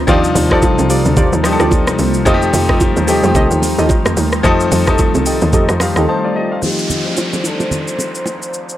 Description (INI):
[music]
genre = amapiano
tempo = 110 BPM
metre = 4/4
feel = swing 58% on 16ths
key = Eb lydian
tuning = A4 = 443 Hz
[part]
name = clear grand piano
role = accompaniment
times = 0.0-8.8 s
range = F3 to A5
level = -17 LUFS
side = left 2 dB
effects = low-pass filter
[part]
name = ethereal airy pad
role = sustained chords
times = 0.0-6.6 s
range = C3 to F4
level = -21 LUFS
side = equal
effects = ensemble chorus, built-in reverb, sidechain pumping
[part]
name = tight log drum bass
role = bass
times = 0.0-6.1 s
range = C2 to F2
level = -17 LUFS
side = equal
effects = none
[part]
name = deep mellow chord stab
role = stabs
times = 0.1-6.1 s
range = F4 to Eb5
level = -21 LUFS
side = right 2 dB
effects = chorus, tape echo
[part]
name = afro-pop drum kit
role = drums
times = 0.1-8.8 s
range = hi-hat, kick drum, rim click, shaker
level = -17 LUFS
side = equal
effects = none
[part]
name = congas and bongos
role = percussion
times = 0.1-8.4 s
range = none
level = -21 LUFS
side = right 3 dB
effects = none
[part]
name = mellow silver concert flute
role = melody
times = 6.6-8.8 s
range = C5 to Eb5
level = -26 LUFS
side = right 1 dB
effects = low-pass filter
[part]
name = downlifter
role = sound effects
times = 6.6-8.8 s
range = none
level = -23 LUFS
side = equal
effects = none
[sound]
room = little or no reverb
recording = dry, gritty hardware recording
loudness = -12 LUFS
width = side -13 dB against mid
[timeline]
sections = 0.0-6.6 A section; 6.6-8.8 B section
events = drop 0.0-6.6; grand piano fill 5.5-6.6; break 6.1-6.6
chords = 0.0 Ebmaj13; 2.3 F9; 6.6 Ebmaj13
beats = | 0.08 0.62 1.17 1.72 | 2.26 2.81 3.35 3.90 | 4.44 4.99 5.53 6.08 | 6.62 7.17 7.72 8.26